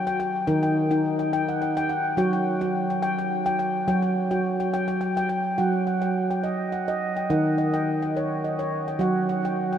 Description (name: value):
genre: world meditative, meditative tuned percussion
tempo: 106 BPM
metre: 3/4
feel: swing 54% on 16ths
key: unclear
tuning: A4 = 440 Hz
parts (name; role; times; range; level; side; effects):
- handpan; solo; 0.0-9.8 s; D#3 to G5; -22 LUFS; equal; diffuse ambient delay
room: wet huge ambient reverb, RT60 8.6 s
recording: dreamy mix soaked in reverb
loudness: -22 LUFS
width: side -9 dB against mid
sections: 0.0-5.6 A section; 5.6-9.8 B section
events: none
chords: 0.5 D#m; 2.2 N.C.; 5.6 D#m/F#; 7.3 D#m; 9.0 N.C.